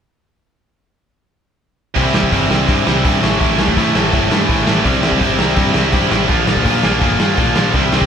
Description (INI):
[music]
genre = punk rock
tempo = 166 BPM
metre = 4/4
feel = straight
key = unclear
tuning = A4 = 442 Hz
[part]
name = tight distorted guitar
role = riff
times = 1.9-8.1 s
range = A2 to F4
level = -17 LUFS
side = right 8 dB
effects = distortion
[part]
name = crunchy overdriven guitar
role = riff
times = 2.0-8.1 s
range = A2 to C4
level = -18 LUFS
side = left 8 dB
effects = none
[part]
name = growling picked electric bass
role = bass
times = 2.0-8.1 s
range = G1 to Bb2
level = -21 LUFS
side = equal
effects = overdrive
[part]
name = raw garage drum kit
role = drums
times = 2.0-8.1 s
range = hi-hat, kick drum, snare drum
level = -17 LUFS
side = equal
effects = none
[sound]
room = light reverb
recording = band playing live in one room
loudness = -12 LUFS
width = side -8 dB against mid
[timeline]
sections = 2.0-8.1 A section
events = none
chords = 2.0 C; 3.2 Am; 6.3 Bb